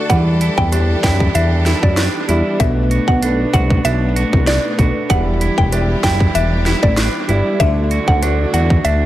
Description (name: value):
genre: dancehall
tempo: 96 BPM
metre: 4/4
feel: straight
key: E minor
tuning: A4 = 441 Hz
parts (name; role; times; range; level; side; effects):
- warm concert grand piano; accompaniment; 0.0-9.1 s; G3 to D5; -23 LUFS; equal; sidechain pumping, analog delay
- clear studio string section; sustained chords; 0.0-9.1 s; E3 to A4; -26 LUFS; left 1 dB; sidechain pumping
- clean electric guitar; arpeggios; 0.0-9.1 s; B2 to F#4; -24 LUFS; right 6 dB; spring reverb, analog delay
- mallet-like synth pluck; melody; 0.1-9.1 s; D5 to G5; -22 LUFS; equal; chorus, phaser, analog delay
- fat analog bass; bass; 0.1-9.1 s; E1 to F#2; -16 LUFS; equal; none
- island pop drum kit; drums; 0.1-9.0 s; hi-hat, kick drum, rim click, snare drum; -18 LUFS; equal; analog delay
room: little or no reverb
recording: echo-heavy mix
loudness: -13 LUFS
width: side -14 dB against mid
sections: 0.0-9.1 A section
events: none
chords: 0.1 Em7; 2.6 Bm7; 5.1 Em7; 7.6 D